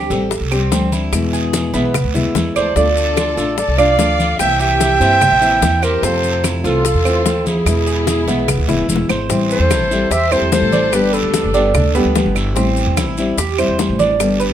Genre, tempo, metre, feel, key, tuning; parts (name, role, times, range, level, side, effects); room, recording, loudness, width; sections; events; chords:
latin, Cuban son and guajira; 147 BPM; 4/4; straight; A minor; A4 = 441 Hz
nylon-string guitar; accompaniment; 0.0-14.5 s; B2 to G4; -20 LUFS; left 3 dB
Cuban tres; arpeggios; 0.0-14.5 s; B3 to D5; -20 LUFS; right 5 dB; slapback echo
upright bass; bass; 0.0-14.5 s; D1 to G2; -20 LUFS; equal
guiro; percussion; 0.1-14.5 s; -29 LUFS; right 5 dB
maracas; percussion; 0.1-14.5 s; -27 LUFS; left 7 dB
bongos; percussion; 0.3-14.4 s; -23 LUFS; left 9 dB
congas; percussion; 0.3-14.5 s; -23 LUFS; left 1 dB
claves; percussion; 0.5-14.4 s; -26 LUFS; right 9 dB
mellow clarinet; melody; 2.6-12.1 s; G#4 to G5; -17 LUFS; right 1 dB
warm symphonic violin section; second line; 2.6-12.1 s; D4 to E5; -24 LUFS; equal
light reverb; close, detailed microphones; -13 LUFS; side -10 dB against mid
0.0-9.3 A section; 9.3-14.5 B section
drum fill 8.7-9.3
0.0 D7sus4; 1.1 E; 2.8 Dm; 4.4 C7; 6.0 Fmaj7; 7.7 E; 9.3 Am7; 10.9 Gadd9; 12.6 Am7